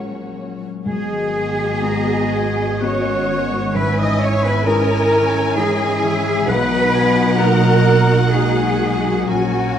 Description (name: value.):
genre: cinematic, emotional film score for orchestra.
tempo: 59-67 BPM.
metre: 3/4.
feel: rubato.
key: G# minor.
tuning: A4 = 438 Hz.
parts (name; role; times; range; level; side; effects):
warm symphonic violin section; melody; 0.0-9.8 s; C#5 to G#5; -27 LUFS; left 3 dB; none.
flute section; second line; 0.0-9.8 s; F#5 to D#6; -28 LUFS; left 1 dB; none.
rich studio violin section; second line; 0.0-9.8 s; F#4 to D#5; -29 LUFS; left 2 dB; none.
warm grand piano; accompaniment; 0.0-9.8 s; A#1 to A#4; -25 LUFS; left 1 dB; none.
warm symphonic viola section; accompaniment; 0.0-9.8 s; B3 to F#4; -25 LUFS; right 1 dB; none.
concert harp; arpeggios; 0.0-9.8 s; G#2 to A#4; -26 LUFS; left 8 dB; none.
rich symphonic cello section; bass; 0.0-9.8 s; A#2 to D#5; -22 LUFS; right 1 dB; none.
clear oboe; second line; 0.9-9.8 s; C#5 to A#5; -28 LUFS; right 1 dB; none.
warm clarinet; second line; 0.9-9.8 s; F#4 to D#5; -28 LUFS; left 1 dB; none.
dark French horn section; sustained chords; 0.9-9.8 s; F#3 to A#4; -24 LUFS; left 2 dB; none.
warm symphonic double bass section; bass; 0.9-9.8 s; G#1 to B1; -21 LUFS; right 4 dB; none.
room: wet scoring stage reverb, RT60 1.9 s.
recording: dark, warm production.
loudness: -14 LUFS.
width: side -9 dB against mid.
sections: 0.9-9.8 A section.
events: none.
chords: 0.0 F#add9/A#; 0.9 G#m7; 3.8 E6/G#; 6.5 Bmaj7.